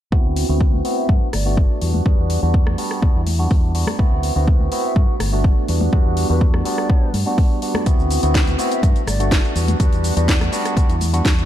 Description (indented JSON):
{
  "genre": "filtered disco house",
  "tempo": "124 BPM",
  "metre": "4/4",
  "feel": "straight",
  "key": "E minor",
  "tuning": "A4 = 440 Hz",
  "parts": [
    { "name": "barky tine electric piano", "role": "accompaniment", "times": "0.1-11.5 s", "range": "G3 to F#4", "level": "-23 LUFS", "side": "equal", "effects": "phaser, sidechain pumping, low-pass filter" },
    { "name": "fingered electric bass", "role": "bass", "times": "0.1-11.5 s", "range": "G1 to G2", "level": "-20 LUFS", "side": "equal", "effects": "tube saturation, sidechain pumping, low-pass filter" },
    { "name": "electronic kick drum", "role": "drums", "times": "0.1-11.4 s", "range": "none", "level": "-16 LUFS", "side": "equal", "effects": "overdrive" },
    { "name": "tambourine and congas", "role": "percussion", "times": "0.1-11.4 s", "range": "none", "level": "-31 LUFS", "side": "left 5 dB", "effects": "none" },
    { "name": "house drum kit", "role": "drums", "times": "0.4-11.5 s", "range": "hi-hat, rim click, shaker, snare drum", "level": "-26 LUFS", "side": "equal", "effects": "overdrive, sidechain pumping on hats, sidechain pumping on perc" },
    { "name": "breathy silver concert flute", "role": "melody", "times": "1.0-1.9, 4.8-9.6 s", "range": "B4 to E5", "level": "-33 LUFS", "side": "equal", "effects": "sidechain pumping, low-pass filter, ping-pong delay" }
  ],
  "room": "little or no reverb",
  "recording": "dark, warm production",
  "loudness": "-15 LUFS",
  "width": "side -12 dB against mid",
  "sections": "0.1-11.5 A section",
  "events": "filter sweep 0.1-11.5",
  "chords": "0.1 D13; 1.1 Gmaj9; 1.8 Em9; 4.0 D13; 5.0 Gmaj9; 5.7 Em9; 7.9 D13; 8.8 Gmaj9; 9.6 Em9",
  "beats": "| 0.12 0.61 1.09 1.57 | 2.06 2.54 3.02 3.51 | 3.99 4.48 4.96 5.45 | 5.93 6.41 6.90 7.38 | 7.86 8.35 8.83 9.32 | 9.80 10.28 10.77 11.25"
}